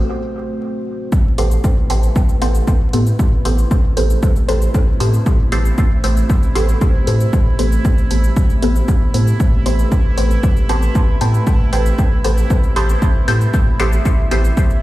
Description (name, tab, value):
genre	dub techno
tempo	116 BPM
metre	4/4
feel	straight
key	A minor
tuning	A4 = 440 Hz
part	dark analog pad	sustained chords	0.0-14.8 s	A3 to E5	-26 LUFS	equal	chorus, sidechain pumping
part	electronic cabasa and hi-hat	drums	1.1-14.8 s	none	-31 LUFS	equal	overdrive, studio ambience
part	electronic kick drum	drums	1.1-14.7 s	none	-14 LUFS	equal	studio ambience
part	bubbling stepped-filter texture	texture	1.1-14.8 s	E4	-31 LUFS	right 3 dB	chorus, built-in reverb, sidechain pumping
part	filtered dub chord stab	stabs	1.4-14.5 s	B3 to C5	-22 LUFS	equal	phaser, sidechain pumping, dub echo
part	warm sub bass	bass	1.4-14.5 s	A1 to A2	-15 LUFS	equal	sidechain pumping
room	digital ambience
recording	played on a big sound system in a bare room, large studio reverb, vinyl crackle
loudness	-13 LUFS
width	side -16 dB against mid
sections	0.0-1.1 A section; 1.1-14.8 A section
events	break 0.1-1.1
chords	0.0 Am; 1.1 Am9